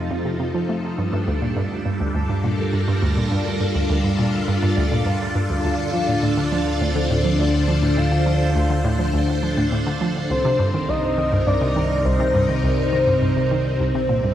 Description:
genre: ambient, sequencer-driven space music.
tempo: 103 BPM.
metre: 4/4.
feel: straight.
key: C dorian.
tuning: A4 = 439 Hz.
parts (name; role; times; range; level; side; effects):
phased string machine; sustained chords; 0.0-14.3 s; C3 to C5; -23 LUFS; left 1 dB; ensemble chorus, phaser.
analog drone; bass; 0.0-14.3 s; C2 to G2; -25 LUFS; equal; chorus.
hollow square pluck; riff; 0.1-14.3 s; C2 to A3; -22 LUFS; equal; chorus, phaser, tape echo.
soft octave-layered synth lead; melody; 5.6-14.3 s; C5 to F5; -24 LUFS; equal; chorus, phaser, vintage 12-bit sampler grit, tape echo.
room: wet cathedral reverb, RT60 6.2 s.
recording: in a vast, echoing space.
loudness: -18 LUFS.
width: side -11 dB against mid.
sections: 0.0-14.3 A section.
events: none.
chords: 0.0 F7; 1.0 Gm7; 5.6 Dm7; 10.3 Cm7.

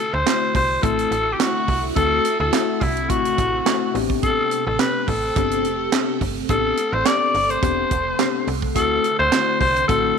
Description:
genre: early-eighties boogie funk.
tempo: 106 BPM.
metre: 4/4.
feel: straight.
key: A dorian.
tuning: A4 = 438 Hz.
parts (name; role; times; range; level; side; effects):
raspy alto saxophone; melody; 0.0-10.2 s; E4 to D5; -20 LUFS; left 1 dB; slapback echo.
phased string machine; sustained chords; 0.0-10.2 s; C3 to F#5; -29 LUFS; right 1 dB; ensemble chorus, phaser.
slap-like FM bass; bass; 0.1-10.1 s; E1 to D2; -27 LUFS; right 1 dB; none.
mellow tine electric piano; accompaniment; 0.3-10.2 s; A3 to A4; -25 LUFS; left 12 dB; medium stereo tremolo.
tight funk drum kit; drums; 0.3-10.0 s; handclaps, hi-hat, kick drum, snare drum; -24 LUFS; right 6 dB; none.
room: light reverb, small room ambience.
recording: 1960s-style stereo with parts hard left and right.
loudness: -17 LUFS.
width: side -6 dB against mid.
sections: 0.0-10.2 A section.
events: none.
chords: 0.0 D7; 3.9 Am11; 8.8 D7.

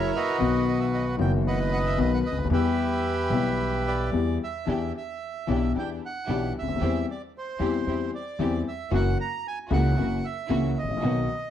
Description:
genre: tango.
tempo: 113 BPM.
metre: 4/4.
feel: rubato.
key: E minor.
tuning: A4 = 440 Hz.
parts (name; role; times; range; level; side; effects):
bandoneon; melody; 0.0-11.5 s; E4 to A#5; -30 LUFS; right 3 dB; slapback echo.
warm upright piano; accompaniment; 0.0-11.3 s; F#1 to G4; -27 LUFS; left 7 dB; none.
upright bass; bass; 0.0-11.3 s; F#1 to E2; -28 LUFS; right 2 dB; none.
rich studio string section; stabs; 4.7-11.2 s; A#3 to G4; -33 LUFS; right 5 dB; none.
room: studio ambience.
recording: dry, close 1970s-style studio recording.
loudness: -24 LUFS.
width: side -10 dB against mid.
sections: 0.0-4.7 A section; 4.7-11.5 A section.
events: none.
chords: 0.4 B; 2.5 Em; 4.7 Em7; 6.8 C/E; 8.9 F#7.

